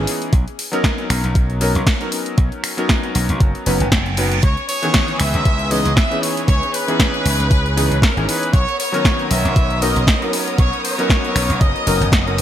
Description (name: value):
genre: nu-disco, nu disco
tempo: 117 BPM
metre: 4/4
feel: swing 55% on 16ths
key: B major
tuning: A4 = 439 Hz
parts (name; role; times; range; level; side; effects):
- clear electric grand piano; accompaniment; 0.0-12.4 s; D#3 to B4; -22 LUFS; left 1 dB; lush chorus, sidechain pumping, ping-pong delay
- slap bass; bass; 0.0-12.4 s; F#1 to C#2; -20 LUFS; equal; sidechain pumping
- house drum kit; drums; 0.1-12.4 s; finger snaps, hi-hat, snare drum; -21 LUFS; equal; gated reverb
- electronic kick drum; drums; 0.3-12.2 s; none; -16 LUFS; equal; overdrive
- reverse cymbal; sound effects; 3.8-4.4 s; none; -28 LUFS; right 6 dB; none
- brilliant trumpet section; melody; 4.4-12.4 s; A#4 to E5; -22 LUFS; equal; digital delay
- bright studio violin section; sustained chords; 4.4-12.4 s; B3 to D#6; -27 LUFS; right 1 dB; sidechain pumping
room: light reverb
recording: bright 1980s-style digital production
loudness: -15 LUFS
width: side -11 dB against mid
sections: 0.0-12.4 A section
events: reverse cymbal 3.8-4.4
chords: 0.3 Bmaj9; 4.4 C#m9; 8.5 Bmaj9